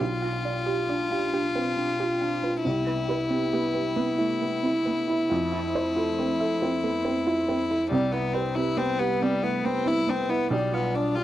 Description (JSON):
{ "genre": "neoclassical piano and strings", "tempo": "46 BPM (dotted quarters)", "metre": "6/8", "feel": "rubato", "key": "unclear", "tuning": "A4 = 439 Hz", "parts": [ { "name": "rich violin", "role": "melody", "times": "0.0-11.2 s", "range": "G3 to F4", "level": "-26 LUFS", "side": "left 3 dB", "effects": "none" }, { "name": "felt-muted upright piano", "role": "accompaniment", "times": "0.0-11.2 s", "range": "B1 to D5", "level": "-28 LUFS", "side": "right 3 dB", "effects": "none" }, { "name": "dark chamber string section", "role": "sustained chords", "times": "0.0-11.2 s", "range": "G3 to D5", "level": "-38 LUFS", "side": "equal", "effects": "none" }, { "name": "soft round pluck", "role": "arpeggios", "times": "0.0-11.2 s", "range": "C4 to F5", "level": "-32 LUFS", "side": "right 3 dB", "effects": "chorus" } ], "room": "little or no reverb", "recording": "dry, close 1970s-style studio recording", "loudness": "-23 LUFS", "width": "side -13 dB against mid", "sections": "0.0-11.2 A section", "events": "none", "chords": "0.0 G7/B; 2.7 Cmaj7; 5.3 Fmaj7; 7.9 Cmaj7; 10.5 G7/B", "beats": "| 0.00 1.33 | 2.65 3.97 | 5.30 6.62 | 7.92 9.22 | 10.53" }